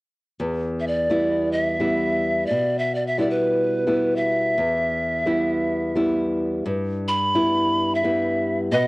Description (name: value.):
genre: andean folk.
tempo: free time.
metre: none.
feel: none.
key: E minor pentatonic.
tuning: A4 = 440 Hz.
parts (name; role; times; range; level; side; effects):
nylon-string guitar; accompaniment; 0.4-8.9 s; E2 to E4; -22 LUFS; equal; cassette tape.
breathy pan flute; melody; 0.8-8.9 s; B4 to B5; -22 LUFS; equal; none.
charango; accompaniment; 8.7-8.9 s; B4 to F#5; -22 LUFS; left 1 dB; cassette tape.
room: light reverb, studio reverb.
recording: home recording on cassette.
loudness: -20 LUFS.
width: side -21 dB against mid.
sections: 0.4-8.7 A section.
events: none.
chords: 0.4 Em.